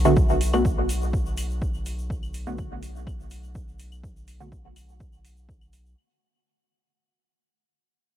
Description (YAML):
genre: dub techno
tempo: 124 BPM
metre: 4/4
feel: straight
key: B minor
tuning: A4 = 437 Hz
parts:
  - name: filtered dub chord stab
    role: stabs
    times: 0.0-4.5 s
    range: D3 to F#4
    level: -24 LUFS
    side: right 1 dB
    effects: chorus, phaser, sidechain pumping, dub echo
  - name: round analog bass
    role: bass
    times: 0.0-5.9 s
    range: B1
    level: -28 LUFS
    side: equal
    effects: sidechain pumping
  - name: egg shaker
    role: percussion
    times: 0.0-5.9 s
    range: none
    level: -42 LUFS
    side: left 3 dB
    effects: none
  - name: electronic kick drum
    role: drums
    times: 0.2-5.6 s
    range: none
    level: -26 LUFS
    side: equal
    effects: overdrive
  - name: electronic hi-hat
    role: drums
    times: 0.4-5.8 s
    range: none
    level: -40 LUFS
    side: right 3 dB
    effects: none
  - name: claves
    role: percussion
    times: 0.5-5.7 s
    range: none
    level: -45 LUFS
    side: left 6 dB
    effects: overdrive, sidechain pumping on perc, dub echo
room: little or no reverb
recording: none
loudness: -23 LUFS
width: side -11 dB against mid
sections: 0.0-6.0 A section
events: fade-out 0.0-6.0; filter sweep on synth stab 0.0-6.0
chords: 0.0 Bm7